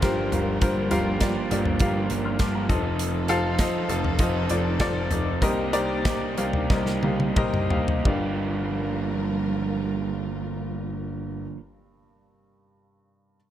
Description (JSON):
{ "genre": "piano-driven pop", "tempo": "86-101 BPM", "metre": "4/4", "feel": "straight", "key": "G minor", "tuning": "A4 = 441 Hz", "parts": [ { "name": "warm upright piano", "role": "accompaniment", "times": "0.0-13.4 s", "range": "G2 to F6", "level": "-27 LUFS", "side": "left 2 dB", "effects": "none" }, { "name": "warm studio string section", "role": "sustained chords", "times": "0.0-11.4 s", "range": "C3 to Bb4", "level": "-35 LUFS", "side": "left 1 dB", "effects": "none" }, { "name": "crunchy overdriven guitar", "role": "riff", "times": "0.0-11.6 s", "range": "G2 to A4", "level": "-30 LUFS", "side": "right 6 dB", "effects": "none" }, { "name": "clear concert grand piano", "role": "bass", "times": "0.0-11.4 s", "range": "F1 to C2", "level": "-28 LUFS", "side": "left 1 dB", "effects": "none" }, { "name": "modern studio drum kit", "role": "drums", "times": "0.0-8.2 s", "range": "hi-hat, kick drum, snare drum, toms", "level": "-26 LUFS", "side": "equal", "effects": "none" } ], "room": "light reverb, small room ambience", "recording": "none", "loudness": "-22 LUFS", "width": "side -11 dB against mid", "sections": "0.0-8.1 A section; 8.1-10.8 B section", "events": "slowing down 3.0-8.1; drum fill 6.7-8.1", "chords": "0.0 Gm7; 2.7 F7; 5.4 Cm7; 8.1 Gm7" }